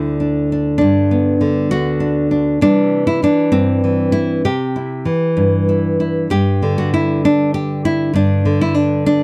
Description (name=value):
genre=folk, solo fingerstyle acoustic guitar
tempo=66 BPM (dotted quarters)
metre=6/8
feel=straight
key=G major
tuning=A4 = 440 Hz
part: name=nylon-string guitar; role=solo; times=0.0-9.2 s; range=D2 to G4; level=-16 LUFS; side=equal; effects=none
room=light reverb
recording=dry, close 1970s-style studio recording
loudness=-16 LUFS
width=mono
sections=0.0-6.3 A section; 6.3-9.2 B section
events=none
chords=0.0 Gmaj7; 2.6 C; 6.3 G5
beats=| 0.81 1.72 | 2.63 3.54 | 4.46 5.38 | 6.31 7.24 | 8.15 9.06